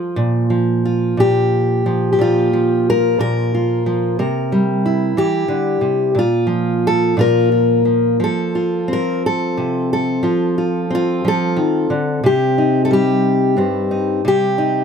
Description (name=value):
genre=folk, solo fingerstyle acoustic guitar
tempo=60 BPM (dotted quarters)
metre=6/8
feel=rubato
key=unclear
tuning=A4 = 440 Hz
part: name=fingerpicked steel-string acoustic guitar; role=solo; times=0.0-14.8 s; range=G2 to Bb4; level=-14 LUFS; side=equal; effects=none
room=light reverb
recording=none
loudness=-14 LUFS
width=side -6 dB against mid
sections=0.0-8.2 A section; 8.2-14.8 B section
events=none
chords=0.2 Bb5; 4.2 C7; 6.2 Bb5; 8.2 F; 12.2 Cm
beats=| 0.16 1.18 | 2.20 3.20 | 4.19 5.18 | 6.16 7.17 | 8.21 9.23 | 10.24 11.25 | 12.24 13.24 | 14.24